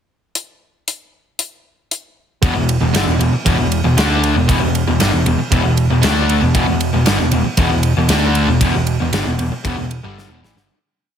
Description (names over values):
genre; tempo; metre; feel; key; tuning
hard rock; 116 BPM; 4/4; straight; E minor; A4 = 440 Hz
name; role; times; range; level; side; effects
gated 80s drum kit; drums; 0.4-10.7 s; hi-hat, kick drum, ride cymbal, snare drum; -20 LUFS; equal; none
distorted electric guitar; riff; 2.4-10.7 s; E2 to D4; -19 LUFS; left 8 dB; distortion
sludgy distorted guitar; riff; 2.4-10.7 s; E2 to D4; -18 LUFS; right 7 dB; overdrive
vintage muted picked electric bass; bass; 2.4-10.7 s; E1 to D2; -19 LUFS; equal; none
room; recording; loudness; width
moderate large studio reverb, RT60 1.3 s, small room ambience; heavily compressed radio sound, multiband compression; -14 LUFS; side -8 dB against mid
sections
0.4-2.4 pickup bar; 2.4-10.7 riff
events
fade-out 8.6-10.7; drum fill 10.2-10.7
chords
0.4 N.C.; 2.4 Em